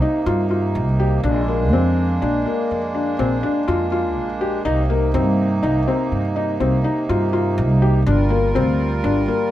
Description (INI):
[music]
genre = contemporary instrumental, chamber music in an uneven meter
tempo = 123 BPM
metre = 7/4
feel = straight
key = C minor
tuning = A4 = 440 Hz
[part]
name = pedal harmonium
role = sustained chords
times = 0.0-9.5 s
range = C3 to Bb4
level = -24 LUFS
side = right 4 dB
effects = none
[part]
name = felt-muted upright piano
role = arpeggios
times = 0.0-9.5 s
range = Bb3 to G4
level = -21 LUFS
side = left 3 dB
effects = none
[part]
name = upright bass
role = bass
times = 0.3-9.3 s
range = G1 to G2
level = -20 LUFS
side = right 1 dB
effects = none
[sound]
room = light reverb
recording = close, detailed microphones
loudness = -17 LUFS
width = side -13 dB against mid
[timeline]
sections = 0.0-9.5 A section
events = none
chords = 0.0 Cm7; 1.2 Bb9; 4.7 Cm7; 8.1 Gm7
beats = 0.27 0.76 | 1.24 1.73 2.22 2.71 3.19 3.68 4.17 | 4.66 5.14 5.63 6.12 6.61 7.09 7.58 | 8.07 8.56 9.04